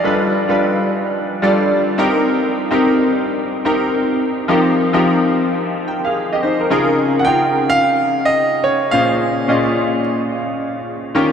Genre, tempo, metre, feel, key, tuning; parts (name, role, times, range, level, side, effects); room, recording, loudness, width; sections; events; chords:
R&B; 108 BPM; 4/4; swing 62% on 16ths; A4 = 438 Hz
clear grand piano; melody; 0.0-1.9, 7.2-10.0 s; Db5 to G5; -19 LUFS; right 2 dB; diffuse ambient delay
clear concert grand piano; accompaniment; 0.0-11.3 s; Bb2 to G5; -15 LUFS; left 1 dB; analog chorus
wet cathedral reverb, RT60 7.3 s; dreamy mix soaked in reverb; -14 LUFS; side -7 dB against mid
0.0-6.7 A section; 6.7-11.3 B section
0.0 G7; 2.0 Cm7; 4.5 F7sus4; 6.7 Db6; 8.9 Bbm9